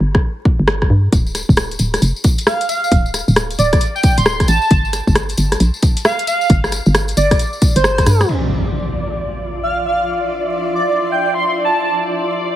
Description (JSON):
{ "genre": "UK garage, two-step garage", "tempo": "134 BPM", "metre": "4/4", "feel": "swing 63% on 16ths", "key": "D minor", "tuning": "A4 = 440 Hz", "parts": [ { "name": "hollow knocking FM bass", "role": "bass", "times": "0.0-8.2 s", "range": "D1 to G2", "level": "-16 LUFS", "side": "equal", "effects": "none" }, { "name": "electronic kick drum", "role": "drums", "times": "0.1-8.0 s", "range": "none", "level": "-14 LUFS", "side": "equal", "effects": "none" }, { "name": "house drum kit", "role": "drums", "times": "0.1-8.4 s", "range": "crash cymbal, hi-hat, rim click", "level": "-18 LUFS", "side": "equal", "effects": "low-pass filter on snare, low-pass filter on hats, low-pass filter on cymbals, low-pass filter on room" }, { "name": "tambourine", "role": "percussion", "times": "1.1-8.3 s", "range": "none", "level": "-26 LUFS", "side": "left 3 dB", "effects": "none" }, { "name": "airy dreamy lead", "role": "melody", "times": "2.5-11.9 s", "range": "C5 to C6", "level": "-19 LUFS", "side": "right 1 dB", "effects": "chorus, dub echo" }, { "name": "rich studio violin section", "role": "sustained chords", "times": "8.3-12.6 s", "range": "D5", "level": "-25 LUFS", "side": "left 2 dB", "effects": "sidechain pumping, low-pass filter" }, { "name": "impact", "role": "sound effects", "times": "8.3-10.1 s", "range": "none", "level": "-22 LUFS", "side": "equal", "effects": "none" }, { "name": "granular cloud pad", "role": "texture", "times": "9.1-12.6 s", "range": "F4 to C6", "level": "-22 LUFS", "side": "right 1 dB", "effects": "built-in reverb, sidechain pumping" } ], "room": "light reverb", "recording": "heavily compressed radio sound, vinyl crackle", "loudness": "-13 LUFS", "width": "side -12 dB against mid", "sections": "0.0-8.3 A section; 8.3-12.6 B section", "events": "drum fill 8.1; impact 8.3-10.1; filter sweep on violin section 8.3-12.6", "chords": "0.0 N.C.; 1.1 Dm; 4.7 N.C.; 8.3 Dm9", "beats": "0.23 0.68 | 1.12 1.57 2.02 2.47 | 2.92 3.36 3.81 4.26 | 4.71 5.16 5.60 6.05 | 6.50 6.95 7.39 7.84 | 8.29 8.74 9.19 9.63 | 10.08 10.53 10.98 11.42 | 11.87 12.32" }